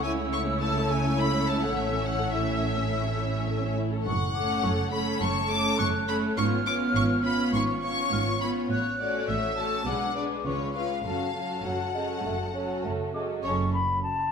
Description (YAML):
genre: quick classical-period movement for symphony orchestra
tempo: 103 BPM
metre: 4/4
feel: straight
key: A major, F# minor from 4.1 s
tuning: A4 = 440 Hz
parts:
  - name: rich studio violin section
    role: melody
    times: 0.0-13.7 s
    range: C#5 to D6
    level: -31 LUFS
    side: left 4 dB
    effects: none
  - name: dark studio violin section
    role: second line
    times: 0.0-13.7 s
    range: A3 to C#5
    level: -34 LUFS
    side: left 3 dB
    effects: none
  - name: silver concert flute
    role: second line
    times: 0.0-14.3 s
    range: A5 to F#6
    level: -32 LUFS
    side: left 2 dB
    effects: none
  - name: rich studio viola section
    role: accompaniment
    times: 0.0-13.7 s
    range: F#3 to E4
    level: -31 LUFS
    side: right 2 dB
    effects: none
  - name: dark studio double bass section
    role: bass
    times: 0.0-13.9 s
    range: F#1 to C#2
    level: -33 LUFS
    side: right 3 dB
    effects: none
  - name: warm studio cello section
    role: bass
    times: 0.0-13.9 s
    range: F#2 to C#3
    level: -33 LUFS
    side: right 2 dB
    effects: none
  - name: mellow bassoon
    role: accompaniment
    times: 11.6-13.4 s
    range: F#3 to C#4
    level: -34 LUFS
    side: right 3 dB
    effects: none
room: wet recital hall reverb, RT60 1.9 s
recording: none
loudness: -25 LUFS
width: side -6 dB against mid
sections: 0.0-13.4 A section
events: none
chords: 0.0 A/C#; 1.8 A; 4.1 F#m; 6.4 C#7/G#; 8.7 F#m/A; 9.9 G#m7b5/B; 10.4 C#7; 11.0 F#m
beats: 0.03 0.61 1.18 | 1.76 2.33 2.91 3.48 | 4.06 4.64 5.21 5.79 | 6.37 6.95 7.53 8.11 | 8.70 9.28 9.86 10.45 | 11.05 11.65 12.24 12.84 | 13.43 14.02